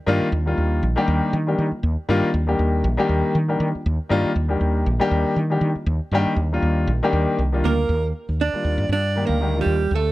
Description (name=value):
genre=jazz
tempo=119 BPM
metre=4/4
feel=swing 55% on 16ths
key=Eb major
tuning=A4 = 441 Hz
part: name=warm grand piano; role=accompaniment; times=0.1-9.9 s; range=Eb3 to G4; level=-22 LUFS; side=left 2 dB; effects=none
part: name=woody fretless electric bass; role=bass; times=0.1-10.1 s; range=Bb1 to Eb3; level=-21 LUFS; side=equal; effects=none
part: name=clear alto saxophone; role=melody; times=7.6-10.1 s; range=G4 to D5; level=-25 LUFS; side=right 2 dB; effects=none
part: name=archtop guitar, miked and amplified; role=second line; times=7.7-10.1 s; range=G3 to D4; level=-26 LUFS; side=right 7 dB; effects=none
room=small room ambience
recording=dry, close 1970s-style studio recording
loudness=-18 LUFS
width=side -17 dB against mid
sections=0.0-7.9 A section; 7.9-10.1 B section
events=none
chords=0.0 Ebmaj7; 7.9 Ebmaj9